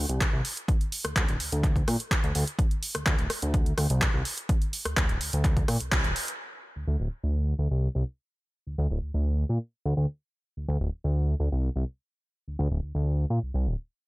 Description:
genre	filtered disco house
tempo	126 BPM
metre	4/4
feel	straight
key	unclear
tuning	A4 = 440 Hz
part	fat analog bass	bass	0.0-13.8 s	D1 to Bb2	-26 LUFS	equal	sidechain pumping, low-pass filter
part	punchy analog drum machine	drums	0.1-6.4 s	handclaps, hi-hat, rim click	-30 LUFS	equal	overdrive, low-pass filter on snare, sidechain pumping on hats, low-pass filter on hats
part	electronic kick drum	drums	0.2-6.0 s	none	-25 LUFS	equal	overdrive
room	digital ambience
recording	none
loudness	-25 LUFS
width	side -20 dB against mid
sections	0.0-6.4 A section; 6.4-14.1 B section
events	filter sweep on analog synth bass 0.0-6.4, 6.4-14.1; band accent 5.9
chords	none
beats	0.21 | 0.69 1.16 1.64 2.11 | 2.59 3.07 3.54 4.02 | 4.49 4.97 5.45 5.92 | 6.40 6.88 7.35 7.83 | 8.30 8.78 9.26 9.73 | 10.21 10.69 11.16 11.64 | 12.11 12.59 13.07 13.54

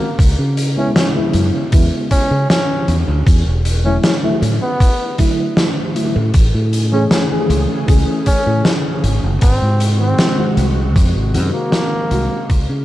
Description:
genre	vaporwave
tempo	78 BPM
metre	4/4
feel	straight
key	unclear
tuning	A4 = 441 Hz
part	mellow flugelhorn	melody	0.0-12.6 s	Bb3 to C#4	-22 LUFS	equal	vintage 12-bit sampler grit, analog delay
part	mellow FM electric piano	accompaniment	0.0-12.3 s	C#3 to G#4	-20 LUFS	equal	tremolo, lush chorus, analog delay
part	fingered electric bass	bass	0.2-12.8 s	E1 to C#3	-16 LUFS	equal	none
part	electronic kick drum	drums	0.2-12.7 s	none	-12 LUFS	equal	vintage 12-bit sampler grit
part	oversized low-tuned drum kit	drums	0.2-12.7 s	hi-hat, snare drum	-20 LUFS	equal	vintage 12-bit sampler grit, gated reverb
part	soft string machine	sustained chords	6.7-12.8 s	B#2 to G#4	-25 LUFS	equal	ensemble chorus
room	light reverb, small room ambience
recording	cassette tape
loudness	-13 LUFS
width	side -15 dB against mid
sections	0.0-12.8 A section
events	fade-out 10.4-12.8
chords	0.2 C#m7; 2.9 E9sus4; 6.3 Amaj7; 9.0 G#7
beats	| 0.19 0.96 1.73 2.50 | 3.27 4.04 4.80 5.57 | 6.34 7.11 7.88 8.65 | 9.42 10.19 10.96 11.73 | 12.50

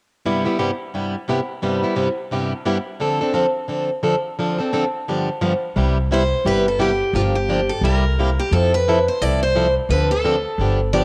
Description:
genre	acoustic string swing (jazz manouche)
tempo	174 BPM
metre	4/4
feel	swing 59% on 8ths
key	C major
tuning	A4 = 440 Hz
part	picked plugged-in steel-string acoustic guitar	accompaniment	0.3-11.0 s	G2 to A4	-22 LUFS	equal	cassette tape
part	upright bass	bass	5.8-11.0 s	G1 to F2	-23 LUFS	equal	none
part	picked steel-string acoustic guitar	melody	6.1-11.0 s	F4 to D5	-23 LUFS	equal	cassette tape
room	moderate spring reverb, RT60 2.3 s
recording	home recording on cassette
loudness	-20 LUFS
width	mono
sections	0.3-5.8 A section; 5.8-11.0 B section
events	none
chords	0.3 Cmaj7/G; 3.0 Dm7; 5.1 G7; 5.8 Cmaj7; 7.1 Gm7; 7.8 C7; 8.5 Fmaj7; 9.9 Dm7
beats	| 0.25 0.60 0.94 1.29 | 1.63 1.98 2.32 2.66 | 3.01 3.35 3.70 4.04 | 4.39 4.73 5.08 5.42 | 5.76 6.11 6.45 6.80 | 7.14 7.49 7.83 8.18 | 8.52 8.86 9.21 9.55 | 9.90 10.24 10.59 10.93

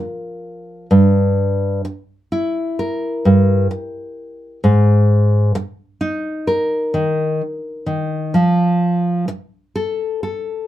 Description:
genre	folk, solo fingerstyle acoustic guitar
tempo	64 BPM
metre	4/4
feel	rubato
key	unclear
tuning	A4 = 440 Hz
part	nylon-string guitar	solo	0.0-10.7 s	G2 to Bb4	-15 LUFS	equal	none
room	light reverb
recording	dark, warm production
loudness	-15 LUFS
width	side -13 dB against mid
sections	0.0-10.7 A section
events	none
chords	0.0 Gm7 (rootless); 0.9 Gm6; 4.6 Absus2; 8.3 F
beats	| 0.91 1.85 2.79 3.72 | 4.65 5.56 6.48 7.41 | 8.35 9.28 10.23

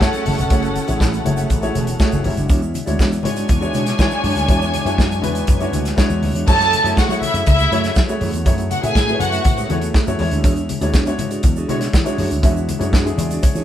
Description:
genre	disco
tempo	121 BPM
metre	4/4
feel	straight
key	F# minor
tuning	A4 = 440 Hz
part	dark studio string section	second line	0.0-9.7 s	C#4 to A5	-21 LUFS	equal	none
part	mellow electric guitar	accompaniment	0.0-13.6 s	G#3 to E5	-26 LUFS	right 4 dB	spring reverb
part	warm grand piano	accompaniment	0.0-13.6 s	G3 to E5	-23 LUFS	left 2 dB	none
part	slap bass with an envelope filter	bass	0.0-13.6 s	E1 to F#3	-22 LUFS	equal	none
part	warm soul drum kit	drums	0.0-13.6 s	crash cymbal, hi-hat, kick drum, snare drum	-18 LUFS	equal	none
part	tube shaker	percussion	0.0-13.6 s	none	-37 LUFS	right 6 dB	none
part	congas	percussion	0.3-13.5 s	none	-30 LUFS	left 6 dB	none
room	moderate studio reverb, RT60 0.8 s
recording	band playing live in one room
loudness	-15 LUFS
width	side -11 dB against mid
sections	0.0-6.5 A section; 6.5-13.6 B section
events	grand piano fill 12.9-13.6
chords	0.0 F#m9; 2.2 E13; 6.5 F#m9; 10.2 E13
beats	0.01 | 0.50 1.00 1.50 2.00 | 2.49 2.99 3.49 3.98 | 4.48 4.98 5.48 5.97 | 6.47 6.97 7.46 7.96 | 8.46 8.96 9.45 9.95 | 10.45 10.94 11.44 11.94 | 12.43 12.93 13.43

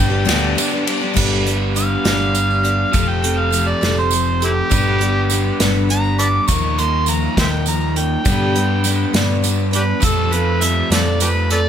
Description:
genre	folk rock and heartland rock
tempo	68 BPM (dotted quarters)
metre	6/8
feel	straight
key	G mixolydian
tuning	A4 = 436 Hz
part	overdriven harmonica	melody	0.0-11.7 s	C4 to D6	-21 LUFS	right 1 dB	plate reverb, digital delay
part	picked twelve-string acoustic guitar	accompaniment	0.0-11.7 s	G2 to B4	-23 LUFS	left 4 dB	none
part	overdriven electric guitar	riff	0.0-11.7 s	G2 to B4	-22 LUFS	right 2 dB	none
part	picked electric bass	bass	0.0-11.7 s	F1 to G2	-20 LUFS	equal	none
part	unplugged drum kit	drums	0.3-11.6 s	crash cymbal, hi-hat, kick drum, ride cymbal, snare drum	-20 LUFS	equal	none
part	tambourine	percussion	0.3-11.4 s	none	-28 LUFS	right 7 dB	none
room	moderate studio reverb, RT60 0.9 s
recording	none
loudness	-14 LUFS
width	side -9 dB against mid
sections	0.0-1.2 A section; 1.2-11.7 B section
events	harmonica solo 1.2-11.7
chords	0.0 G; 2.9 Fadd9; 4.7 G; 6.5 Ebsus2; 8.2 G; 10.0 Fadd9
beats	0.27 | 1.16 2.05 | 2.93 3.82 | 4.71 5.59 | 6.48 7.37 | 8.25 9.13 | 10.02 10.90

